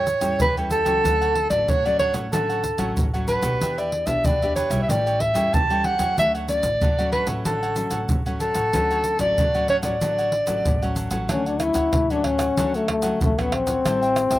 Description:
samba and choro; 94 BPM; 4/4; straight; D major; A4 = 441 Hz
breathy soprano saxophone; melody; 0.0-10.9 s; A4 to A5; -21 LUFS; equal; slapback echo
cavaquinho; accompaniment; 0.0-14.4 s; D4 to G5; -31 LUFS; right 3 dB; slapback echo
nylon-string guitar; accompaniment; 0.0-14.4 s; A2 to G4; -30 LUFS; left 2 dB
upright bass; bass; 0.0-14.4 s; A1 to E2; -30 LUFS; equal
egg shaker, pandeiro, surdo and tamborim; percussion; 0.1-14.4 s; -26 LUFS; equal
breathy trombone; second line; 11.3-14.4 s; A3 to E4; -21 LUFS; left 3 dB
little or no reverb; recorded outdoors, with no room sound; -19 LUFS; side -15 dB against mid
0.0-11.3 A section; 11.3-14.4 B section
trombone solo 11.3-14.4
0.0 A7; 1.0 Dmaj7; 3.6 Em7; 4.9 A7; 6.2 Dmaj7; 13.9 Am7
0.40 | 1.04 1.69 2.33 2.97 | 3.61 4.25 4.89 5.53 | 6.17 6.81 7.45 8.09 | 8.73 9.38 10.02 10.65 | 11.29 11.94 12.57 13.21 | 13.86

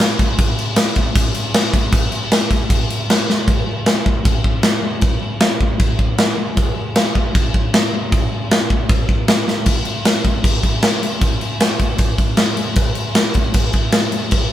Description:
punk; 155 BPM; 4/4; straight
big rock drum kit; drums; 0.0-14.4 s; crash cymbal, kick drum, snare drum; -14 LUFS; equal
light reverb; band playing live in one room; -14 LUFS; side -12 dB against mid
0.0-3.5 A section; 3.5-9.7 B section; 9.7-14.5 C section
drum fill 3.3, 9.5
| 0.38 0.77 1.15 1.54 | 1.93 2.31 2.70 3.09 | 3.47 3.86 4.25 4.63 | 5.02 5.41 5.79 6.18 | 6.57 6.95 7.34 7.73 | 8.11 8.50 8.89 9.28 | 9.66 10.05 10.44 10.83 | 11.21 11.60 11.99 12.38 | 12.77 13.16 13.55 13.94 | 14.32

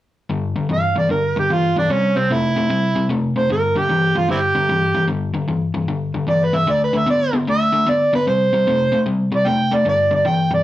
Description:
blues; 151 BPM; 4/4; swing 65% on 8ths; G mixolydian; A4 = 439 Hz
overdriven semi-hollow guitar; riff; 0.3-10.6 s; G2 to B3; -19 LUFS; left 2 dB
overdriven harmonica; melody; 0.7-10.6 s; C4 to G5; -17 LUFS; right 2 dB
wet studio reverb, RT60 0.6 s; band playing live in one room; -16 LUFS; side -14 dB against mid
0.3-10.6 A section
0.3 G5; 1.9 C; 3.5 G5; 6.7 D5; 8.3 C5; 9.9 G5
| 0.31 0.70 1.10 1.50 | 1.90 2.30 2.70 3.09 | 3.49 3.89 4.29 4.69 | 5.08 5.48 5.88 6.28 | 6.68 7.07 7.47 7.87 | 8.27 8.66 9.06 9.46 | 9.86 10.26

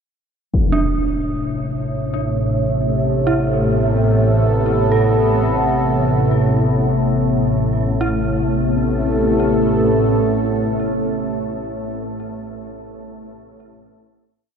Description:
dark ambient drone; free time; A4 = 440 Hz
sweeping resonant pad; sustained chords; 0.5-12.2 s; C3 to A4; -20 LUFS; equal; chorus, phaser
organ-like drone; drone; 1.2-11.9 s; A1 to A2; -19 LUFS; equal; ensemble chorus, built-in reverb
impact; percussion; 0.5-0.7 s; -21 LUFS; left 1 dB; low-pass filter on sfx
dark detuned synth bell; arpeggios; 0.7-14.2 s; D4 to A4; -26 LUFS; right 2 dB; chorus, tremolo, ping-pong delay
moderate huge ambient reverb, RT60 8.9 s; dark, warm production; -15 LUFS; side -6 dB against mid
0.5-8.0 A section; 8.0-11.7 final chord
0.5 Amadd9
free time

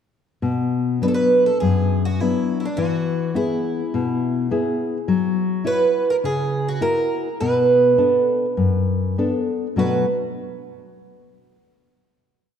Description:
fado-style ballad; 104 BPM; 4/4; rubato; B dorian; A4 = 441 Hz
nylon-string guitar; accompaniment; 0.4-10.0 s; F#2 to C#5; -20 LUFS; left 4 dB
picked twelve-string acoustic guitar; melody; 1.0-10.1 s; D4 to B4; -20 LUFS; right 3 dB
moderate concert hall reverb, RT60 2.3 s; dark, warm production; -18 LUFS; side -8 dB against mid
0.4-9.8 A section; 9.8-12.1 final chord
0.4 Bm; 2.8 E; 5.1 F#7; 7.4 Bm7
| 0.42 1.02 1.61 2.20 | 2.78 3.35 3.92 4.50 | 5.07 5.64 6.22 6.79 | 7.38 7.96 8.55 9.16 | 9.77

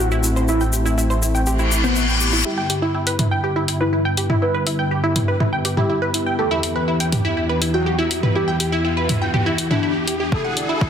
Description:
melodic techno; 122 BPM; 4/4; straight; A4 = 439 Hz
fat analog lead; melody; 0.0-10.5 s; B3 to B4; -25 LUFS; left 1 dB; wide subtle chorus, sidechain pumping, tape echo
warm analog pad; sustained chords; 0.0-10.9 s; D2 to G4; -24 LUFS; equal; wide subtle chorus, sidechain pumping
wide unison pluck; arpeggios; 0.0-10.9 s; D4 to G5; -22 LUFS; equal; sidechain pumping, tape echo
fat analog bass; bass; 0.0-2.4 s; A1; -20 LUFS; equal; sidechain pumping
egg shaker; percussion; 0.0-2.4 s; -27 LUFS; left 3 dB
reverse cymbal and riser; sound effects; 1.6-10.9 s; -27 LUFS; left 2 dB
deep house drum kit; drums; 2.7-10.7 s; hi-hat, toms; -22 LUFS; equal; overdrive, low-pass filter on hats, low-pass filter on toms, low-pass filter on room
electronic kick drum; drums; 10.3-10.9 s; -22 LUFS; equal; overdrive
moderate lush hall reverb, RT60 1.7 s, digital ambience; dense, heavily limited modern master, high-pass filter; -17 LUFS; side -8 dB against mid
0.0-2.5 A section; 2.5-10.9 B section
filter sweep on synth pluck 0.0-2.5; reverse cymbal 1.6-2.5; build-up 2.5-10.9; riser 2.5-10.9; filter sweep on analog synth pad 2.5-10.9
0.0 Am; 2.5 G; 6.4 Em; 10.3 Dadd9
| 0.49 0.98 1.47 1.96 | 2.45 2.94 3.44 3.93 | 4.42 4.91 5.40 5.89 | 6.39 6.88 7.37 7.86 | 8.36 8.85 9.34 9.83 | 10.32 10.81

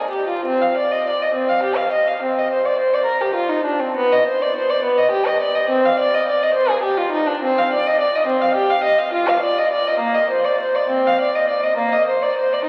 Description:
classical, baroque-style suite movement for unaccompanied violin; 69 BPM (dotted quarters); 6/8; uneven beats, rubato; C minor; A4 = 440 Hz
dark violin; solo; 0.0-12.7 s; Bb3 to F5; -18 LUFS; equal
wet cathedral reverb, RT60 6.4 s; very old 78 rpm record, vinyl crackle; -18 LUFS; mono
0.4-12.7 A section
| 0.44 1.34 | 2.21 3.06 | 3.98 4.86 | 5.71 6.54 | 7.41 8.26 | 9.12 9.97 | 10.89 11.79 | 12.68

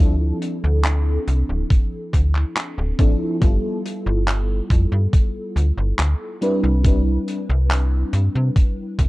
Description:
vaporwave; 70 BPM; 4/4; straight; C major; A4 = 435 Hz
FM electric piano with soft pad layer; accompaniment; 0.0-9.1 s; F3 to B4; -25 LUFS; equal; tremolo, ensemble chorus, tape echo
slap-like FM bass; bass; 0.0-9.1 s; D1 to C3; -18 LUFS; equal
modern studio drum kit; drums; 0.4-9.1 s; handclaps, hi-hat; -27 LUFS; equal
electronic kick drum; drums; 1.7-9.1 s; -16 LUFS; equal
studio reverb; dark, warm production, cassette tape; -17 LUFS; side -19 dB against mid
0.0-9.1 A section
0.0 Dm9; 3.4 G13; 6.4 Cmaj9
0.85 1.71 2.56 | 3.42 4.28 5.13 5.99 | 6.85 7.71 8.56

